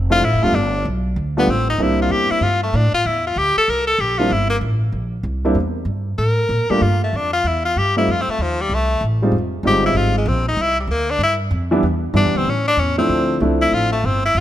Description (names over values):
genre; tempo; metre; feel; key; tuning
jazz, small-group swing and bop; 191 BPM; 4/4; swing 64% on 8ths; C mixolydian; A4 = 441 Hz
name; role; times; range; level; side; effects
upright bass; bass; 0.0-14.4 s; D1 to Bb2; -20 LUFS; right 1 dB; none
bright tenor saxophone; melody; 0.1-14.4 s; F3 to Bb4; -18 LUFS; left 2 dB; none
warm upright piano; accompaniment; 0.1-13.9 s; E3 to F4; -20 LUFS; right 1 dB; none
room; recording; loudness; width
light reverb; close, detailed microphones; -16 LUFS; side -12 dB against mid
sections
0.0-3.1 A section; 3.1-14.4 A section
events
tenor saxophone solo 0.0-14.4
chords
0.0 Dm7; 0.5 Gadd9; 1.8 C9; 2.4 Gsus2; 3.1 C9; 6.8 F69; 7.4 C; 8.1 F7; 9.3 Fm7; 10.6 Cadd9; 11.8 Em7; 12.5 A5; 13.1 Dm7